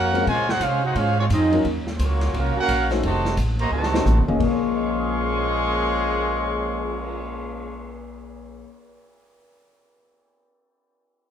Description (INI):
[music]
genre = jazz, big band swing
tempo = 174 BPM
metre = 4/4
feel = swing 64% on 8ths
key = Bb minor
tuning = A4 = 444 Hz
[part]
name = warm trumpet section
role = melody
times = 0.0-7.9 s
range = Ab3 to Db6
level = -25 LUFS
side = right 1 dB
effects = none
[part]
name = bright trombone section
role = second line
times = 0.0-7.9 s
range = Bb2 to Gb4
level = -27 LUFS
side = right 2 dB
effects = none
[part]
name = upright bass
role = bass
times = 0.0-8.6 s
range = Eb1 to C3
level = -25 LUFS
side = equal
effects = none
[part]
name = warm grand piano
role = accompaniment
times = 0.1-8.9 s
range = Bb2 to Eb7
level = -27 LUFS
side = left 6 dB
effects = none
[part]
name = vintage drum kit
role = drums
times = 0.1-7.1 s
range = crash cymbal, cymbal swell, hi-hat, kick drum, ride cymbal, snare drum, toms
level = -32 LUFS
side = equal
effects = none
[sound]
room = moderate large studio reverb, RT60 1.3 s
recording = band playing live in one room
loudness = -20 LUFS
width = side -9 dB against mid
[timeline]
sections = 0.0-4.4 A section; 4.4-7.2 B section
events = drum fill 3.7-4.4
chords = 0.3 Bbm9; 1.6 Ebm9; 3.0 F7b9b13; 4.4 Bbm9